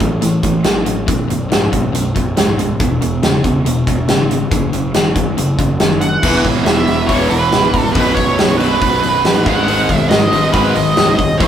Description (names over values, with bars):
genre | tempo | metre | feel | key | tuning
classic rock | 140 BPM | 4/4 | straight | B mixolydian | A4 = 440 Hz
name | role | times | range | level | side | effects
crunchy overdriven guitar | riff | 0.0-11.5 s | B1 to A3 | -20 LUFS | left 7 dB | none
distorted electric guitar | riff | 0.0-11.5 s | B1 to A3 | -19 LUFS | right 5 dB | overdrive
fuzz picked electric bass | bass | 0.0-11.5 s | B0 to A1 | -20 LUFS | equal | overdrive
huge arena drum kit | drums | 0.0-11.5 s | crash cymbal, hi-hat, kick drum, snare drum | -16 LUFS | equal | none
bluesy overdriven lead guitar | melody | 6.0-11.5 s | B4 to F#5 | -16 LUFS | right 2 dB | wah, distortion, analog delay
picked steel-string acoustic guitar | accompaniment | 6.2-11.5 s | E2 to A4 | -26 LUFS | left 1 dB | none
warm upright piano | accompaniment | 6.2-11.5 s | D#4 to C#5 | -26 LUFS | left 3 dB | none
room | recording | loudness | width
moderate large studio reverb, RT60 1.4 s | band playing live in one room | -12 LUFS | side -9 dB against mid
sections
0.0-6.2 A section; 6.2-11.5 B section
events
none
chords
0.0 A5; 1.1 B5; 2.8 E; 4.5 F#5; 6.2 E; 8.0 B; 9.5 G#m7